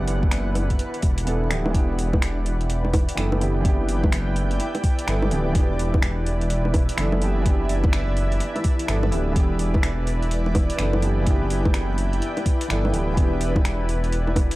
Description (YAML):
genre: future garage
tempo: 126 BPM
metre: 4/4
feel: swing 63% on 16ths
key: E minor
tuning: A4 = 440 Hz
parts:
  - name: felt-muted upright piano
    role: accompaniment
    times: 0.0-14.6 s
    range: E3 to A4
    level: -29 LUFS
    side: right 2 dB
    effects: sidechain pumping, tape echo
  - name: granular cloud pad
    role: sustained chords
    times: 0.0-14.6 s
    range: E4 to G5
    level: -29 LUFS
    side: equal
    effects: built-in reverb, sidechain pumping
  - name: dark detuned saw bass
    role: bass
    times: 0.0-14.5 s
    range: D1 to G1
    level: -24 LUFS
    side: equal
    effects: sidechain pumping
  - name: wind-like tuned noise texture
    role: texture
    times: 0.0-1.8 s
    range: E4 to B4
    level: -39 LUFS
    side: right 1 dB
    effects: built-in reverb
  - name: garage drum kit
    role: drums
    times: 0.1-14.6 s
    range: bongos, finger snaps, hi-hat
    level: -28 LUFS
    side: equal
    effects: overdrive
  - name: electronic kick drum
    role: drums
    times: 0.2-14.5 s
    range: none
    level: -20 LUFS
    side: equal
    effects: overdrive
room: little or no reverb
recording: dry, gritty hardware recording, vinyl crackle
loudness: -20 LUFS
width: side -18 dB against mid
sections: 0.0-1.7 A section; 1.7-14.6 A section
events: none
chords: 0.0 Em7